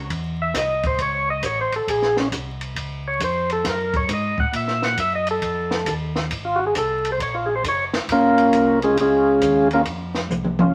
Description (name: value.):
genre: soul jazz organ trio.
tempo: 136 BPM.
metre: 4/4.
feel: swing 66% on 8ths.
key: Bb minor.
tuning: A4 = 439 Hz.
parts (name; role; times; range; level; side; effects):
mellow tonewheel organ; bass; 0.0-10.7 s; Gb1 to Bb2; -32 LUFS; equal; chorus vibrato, slow rotary speaker.
compact cocktail drum kit; drums; 0.1-10.7 s; hi-hat, kick drum, ride cymbal, snare drum, toms; -29 LUFS; equal; none.
percussive tonewheel organ; melody; 0.4-10.7 s; Ab3 to Gb5; -21 LUFS; equal; slow rotary speaker.
room: wet studio reverb, RT60 0.7 s.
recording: vinyl crackle.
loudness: -21 LUFS.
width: mono.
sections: 0.0-10.7 A section.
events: tonewheel organ solo 0.0-10.7; drum fill 10.3-10.7.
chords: 0.1 Am; 1.9 Bbm; 3.7 Gb; 5.4 F7#9; 7.2 Bbm7; 9.9 F5.